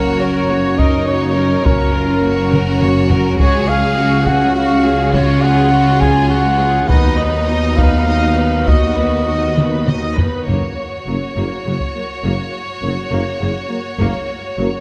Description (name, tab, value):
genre	cinematic, epic orchestral film score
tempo	68 BPM (dotted quarters)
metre	6/8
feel	straight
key	F# major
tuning	A4 = 440 Hz
part	rich studio violin section	melody	0.0-14.8 s	F#4 to D#5	-27 LUFS	equal	none
part	clear symphonic violin section	second line	0.0-14.8 s	C#4 to G#4	-29 LUFS	equal	none
part	rich symphonic viola section	accompaniment	0.0-14.7 s	C#3 to A#4	-27 LUFS	equal	none
part	mellow French horn section	sustained chords	0.0-14.7 s	F#3 to C#4	-23 LUFS	equal	none
part	mellow trumpet	stabs	0.0-10.2 s	A#4 to G#5	-21 LUFS	equal	none
part	rich symphonic cello section	bass	0.0-14.7 s	C#2 to F#2	-24 LUFS	equal	none
part	warm symphonic double bass section	bass	0.0-14.7 s	F#1 to D#2	-23 LUFS	equal	none
part	taiko ensemble	drums	0.8-14.8 s	none	-20 LUFS	equal	none
part	mellow tuba	bass	10.5-14.7 s	F#1	-27 LUFS	equal	none
room	moderate scoring stage reverb, RT60 2.0 s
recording	none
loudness	-15 LUFS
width	mono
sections	0.0-10.5 A section; 10.5-14.8 B section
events	drum fill 2.5-3.4, 9.6-10.5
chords	0.0 F#; 3.4 C#sus4; 6.9 B/D#; 10.5 F#